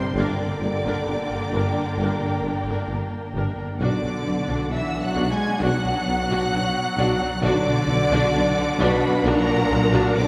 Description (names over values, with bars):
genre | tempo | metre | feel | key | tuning
cinematic | 66 BPM | 4/4 | straight | unclear | A4 = 440 Hz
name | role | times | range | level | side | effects
rich symphonic violin section | melody | 0.0-10.3 s | Bb5 to Ab6 | -35 LUFS | equal | none
hollow small flute group | second line | 0.0-10.3 s | Bb4 to Ab5 | -33 LUFS | equal | none
rich symphonic violin section | second line | 0.0-10.3 s | Bb4 to Ab5 | -33 LUFS | equal | none
rich symphonic viola section | accompaniment | 0.0-10.3 s | Bb3 to Bb4 | -31 LUFS | equal | none
warm symphonic string section | sustained chords | 0.0-10.3 s | F#3 to G5 | -31 LUFS | equal | none
warm trombone section | sustained chords | 0.0-10.3 s | Bb2 to Ab3 | -34 LUFS | equal | none
rich symphonic cello section | bass | 0.0-10.3 s | Bb2 to Ab3 | -31 LUFS | equal | none
mellow tuba | bass | 0.1-10.2 s | G1 to B1 | -31 LUFS | equal | none
mellow French horn section | sustained chords | 0.2-9.6 s | F#3 to D4 | -36 LUFS | equal | none
rich symphonic double bass section | bass | 0.2-10.2 s | G1 to B1 | -30 LUFS | equal | none
room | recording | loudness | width
wet concert hall reverb, RT60 2.4 s | heard from further back in the room | -22 LUFS | mono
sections
0.0-10.3 A section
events
none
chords
0.0 Gm; 3.8 Bm